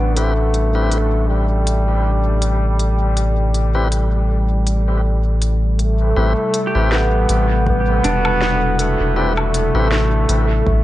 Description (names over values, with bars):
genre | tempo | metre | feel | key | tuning
ambient dub | 80 BPM | 4/4 | swing 55% on 16ths | A dorian | A4 = 439 Hz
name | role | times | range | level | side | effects
clear trombone | melody | 0.0-10.8 s | G3 to B3 | -21 LUFS | equal | dub echo
warbly tape-like pad | sustained chords | 0.0-10.8 s | C3 to A4 | -25 LUFS | equal | chorus, built-in reverb, vintage 12-bit sampler grit
pedal steel guitar | arpeggios | 0.0-10.8 s | D4 to G4 | -28 LUFS | equal | dub echo
soft dub sub bass | bass | 0.0-10.8 s | E1 to A1 | -17 LUFS | equal | tube saturation
tonewheel organ | stabs | 0.2-9.9 s | C4 to B4 | -27 LUFS | left 2 dB | overdrive, dub echo
organic electronic drum kit | drums | 0.2-10.5 s | hi-hat, snare drum, woodblock | -26 LUFS | left 1 dB | small room ambience, dub echo
electronic kick drum | drums | 7.7-10.8 s | none | -21 LUFS | equal | none
room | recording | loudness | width
light reverb, digital ambience | nothing above 10.7 kHz | -15 LUFS | side -15 dB against mid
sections
0.0-6.2 A section; 6.2-10.8 B section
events
filter sweep on pedal steel guitar 0.0-6.2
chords
0.0 Am9